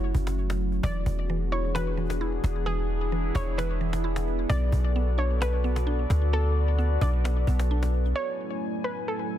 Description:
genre	hip hop, atmospheric cloud-rap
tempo	131 BPM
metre	4/4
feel	half-time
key	F# minor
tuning	A4 = 438 Hz
part	soft round pluck	melody	0.0-9.4 s	G#4 to D5	-34 LUFS	equal	chorus, ping-pong delay
part	warbly tape-like pad	sustained chords	0.0-9.4 s	E3 to G#5	-32 LUFS	equal	chorus, built-in reverb
part	warm 808-style bass	bass	0.0-8.1 s	E1 to D2	-25 LUFS	equal	none
part	cajon	drums	0.1-8.1 s	none	-34 LUFS	equal	none
part	mallet-like synth pluck	arpeggios	0.8-8.2 s	E3 to E4	-36 LUFS	right 4 dB	chorus, ping-pong delay
room	little or no reverb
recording	dense, heavily limited modern master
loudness	-24 LUFS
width	side -11 dB against mid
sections	0.0-8.2 A section; 8.2-9.4 A section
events	none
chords	0.0 F#m7; 0.8 E7; 4.5 Bm7; 8.2 F#m9

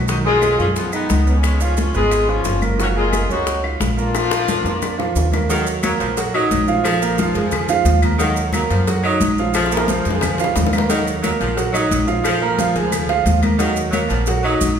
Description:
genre	latin, salsa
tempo	178 BPM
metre	4/4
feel	straight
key	Eb minor from 5.5 s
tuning	A4 = 440 Hz
part	bright upright piano	accompaniment	0.0-14.7 s	D#3 to Eb6	-21 LUFS	right 5 dB	none
part	upright bass	bass	0.0-14.8 s	Gb1 to F#2	-21 LUFS	equal	none
part	warm horn section	melody	0.1-5.1 s	Db3 to G#4	-20 LUFS	left 3 dB	none
part	bongos and cowbell	percussion	0.1-14.8 s	none	-27 LUFS	left 4 dB	none
part	congas	percussion	0.1-14.8 s	none	-25 LUFS	left 2 dB	none
part	maracas	percussion	0.1-14.8 s	none	-31 LUFS	right 6 dB	none
part	claves	percussion	0.4-14.6 s	none	-32 LUFS	left 4 dB	none
part	bright saxophone section	second line	5.5-14.7 s	Eb3 to Gb3	-22 LUFS	left 2 dB	none
room	wet recital hall reverb, RT60 1.3 s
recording	recorded in a church or concert hall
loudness	-15 LUFS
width	side -8 dB against mid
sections	0.0-5.5 A section; 5.5-14.8 B section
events	drum fill 4.1-5.5, 9.5-10.9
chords	0.1 B6; 1.4 Db7; 2.8 Gbmaj7; 4.1 Bb; 5.5 Ebm; 6.8 Bb5; 8.2 Ebm; 9.5 Bb5; 10.9 Ebm; 12.2 Bb7; 13.6 Ebm

